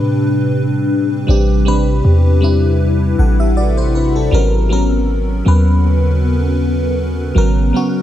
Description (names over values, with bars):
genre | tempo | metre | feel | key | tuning
contemporary R&B | 79 BPM | 4/4 | swing 54% on 16ths | unclear | A4 = 441 Hz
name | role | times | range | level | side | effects
FM electric piano with soft pad layer | accompaniment | 0.0-8.0 s | F#3 to F#5 | -18 LUFS | left 1 dB | chorus, phaser
glassy FM pad | sustained chords | 0.0-8.0 s | C3 to E#5 | -19 LUFS | left 1 dB | ensemble chorus, built-in reverb, phaser
warm 808-style bass | bass | 0.0-7.7 s | G#1 to A2 | -14 LUFS | equal | none
room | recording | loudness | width
little or no reverb | none | -12 LUFS | side -12 dB against mid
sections
0.0-8.0 A section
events
none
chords
0.0 Am11; 4.3 G#m11